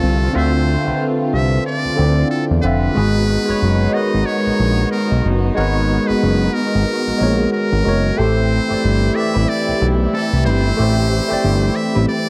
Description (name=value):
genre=R&B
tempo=92 BPM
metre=4/4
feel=swing 58% on 16ths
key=unclear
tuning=A4 = 439 Hz
part: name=trumpet with metal mute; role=melody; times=0.0-12.3 s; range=A4 to E5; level=-26 LUFS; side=equal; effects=none
part: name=barky tine electric piano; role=accompaniment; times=0.0-12.3 s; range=D3 to E5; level=-21 LUFS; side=equal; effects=overdrive, phaser
part: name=dark studio string section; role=sustained chords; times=0.0-12.3 s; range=D3 to G4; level=-29 LUFS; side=equal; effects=none
part: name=warm horn section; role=stabs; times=0.0-12.3 s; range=Eb3 to F4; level=-30 LUFS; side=equal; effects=none
part: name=fat analog bass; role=bass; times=0.0-12.1 s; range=F1 to E2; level=-19 LUFS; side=equal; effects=none
part: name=electric guitar through a small old amp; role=second line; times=9.3-12.1 s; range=G3 to B4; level=-27 LUFS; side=equal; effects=none
room=small room ambience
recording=dry, close 1970s-style studio recording, vinyl crackle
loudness=-17 LUFS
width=mono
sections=0.0-12.3 A section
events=none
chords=0.0 Dm9; 3.0 Abm9; 8.2 Am9